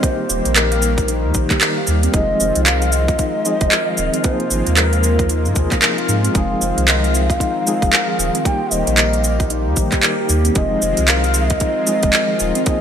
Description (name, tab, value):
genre	organic downtempo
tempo	114 BPM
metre	4/4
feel	swing 60% on 16ths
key	F minor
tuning	A4 = 440 Hz
part	breathy mellow low ney	melody	0.0-12.8 s	Bb4 to G5	-22 LUFS	equal	ping-pong delay
part	tine electric piano	accompaniment	0.0-12.8 s	Eb3 to Ab4	-25 LUFS	left 2 dB	medium tremolo, sidechain pumping, ping-pong delay
part	warm analog pad	sustained chords	0.0-12.8 s	C3 to G4	-25 LUFS	equal	chorus, sidechain pumping
part	handpan	arpeggios	0.0-12.8 s	C4 to F5	-23 LUFS	left 3 dB	ping-pong delay
part	electronic kick drum	drums	0.0-12.8 s	none	-19 LUFS	equal	overdrive
part	organic electronic drum kit	drums	0.0-12.8 s	handclaps, hi-hat, shaker	-18 LUFS	right 1 dB	overdrive
part	warm sub bass	bass	0.3-12.5 s	Eb1 to Ab2	-19 LUFS	equal	sidechain pumping
room	moderate plate reverb, RT60 2.6 s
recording	bright 1980s-style digital production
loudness	-14 LUFS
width	side -8 dB against mid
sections	0.0-12.8 A section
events	none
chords	0.0 Eb; 2.1 Fm7; 4.2 Ab69; 6.4 Fm7; 8.5 Eb; 10.6 Fm7